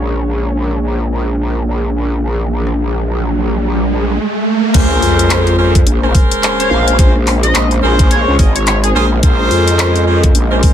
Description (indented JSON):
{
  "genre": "glitch hop",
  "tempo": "107 BPM",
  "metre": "4/4",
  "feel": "swing 59% on 16ths",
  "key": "Bb minor",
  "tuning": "A4 = 439 Hz",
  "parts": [
    { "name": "dark analog pad", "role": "sustained chords", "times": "0.0-10.7 s", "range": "Ab3 to Eb5", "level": "-23 LUFS", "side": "equal", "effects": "chorus, sidechain pumping" },
    { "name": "growl bass", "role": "bass", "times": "0.0-10.6 s", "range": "Ab1 to F2", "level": "-14 LUFS", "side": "equal", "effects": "chorus, overdrive" },
    { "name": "riser and sub drop", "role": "sound effects", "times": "2.4-7.0 s", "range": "none", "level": "-19 LUFS", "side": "right 2 dB", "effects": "none" },
    { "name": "drum and bass drum kit", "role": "drums", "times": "2.7-10.7 s", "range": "crash cymbal, handclaps, hi-hat, rim click", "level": "-18 LUFS", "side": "left 1 dB", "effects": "none" },
    { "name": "bright horn section", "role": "stabs", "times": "4.7-10.7 s", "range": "Db4 to Eb5", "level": "-17 LUFS", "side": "equal", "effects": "sidechain pumping, dub echo" },
    { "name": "electronic kick drum", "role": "drums", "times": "4.7-10.7 s", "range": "none", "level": "-10 LUFS", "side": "equal", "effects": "none" },
    { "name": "sync lead", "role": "melody", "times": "6.6-9.1 s", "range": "Ab4 to F5", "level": "-21 LUFS", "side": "left 1 dB", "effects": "wide subtle chorus, cassette tape, dub echo" }
  ],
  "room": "digital ambience",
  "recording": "none",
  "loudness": "-11 LUFS",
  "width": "side -10 dB against mid",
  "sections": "0.0-4.7 A section; 4.7-10.7 B section",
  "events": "riser 2.4-4.7; drop 4.7-10.7; impact 4.7-7.0",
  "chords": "0.0 Bbm7; 4.7 Bbm9",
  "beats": "| 0.26 0.82 1.38 1.94 | 2.50 3.06 3.62 4.19 | 4.75 5.31 5.87 6.43 | 6.99 7.55 8.11 8.67 | 9.23 9.79 10.35"
}